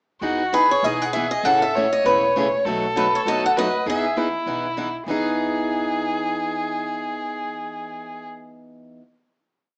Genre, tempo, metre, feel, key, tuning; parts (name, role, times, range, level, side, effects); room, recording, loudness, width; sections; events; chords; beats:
acoustic string swing (jazz manouche); 198 BPM; 4/4; swing 58% on 8ths; E major; A4 = 441 Hz
rich violin; second line; 0.2-8.3 s; E4 to C#5; -27 LUFS; equal
picked steel-string acoustic guitar; accompaniment; 0.2-9.0 s; B2 to G#4; -28 LUFS; equal
upright bass; bass; 0.2-9.0 s; E1 to F#2; -43 LUFS; equal
picked swing-style acoustic guitar; melody; 0.5-4.7 s; B4 to F#5; -23 LUFS; equal; slapback echo
moderate club reverb, RT60 0.8 s; small speaker sound; -22 LUFS; mono
0.2-5.1 A section; 5.1-7.5 final chord
0.2 Emaj7; 1.4 Amaj9; 2.6 B7; 3.9 Emaj7
| 0.22 0.53 0.83 1.14 | 1.44 1.74 2.04 2.35 | 2.65 2.95 3.25 3.56 | 3.86 4.16 4.46 4.77 | 5.07 5.37 5.68 5.98 | 6.28 6.59 6.89 7.20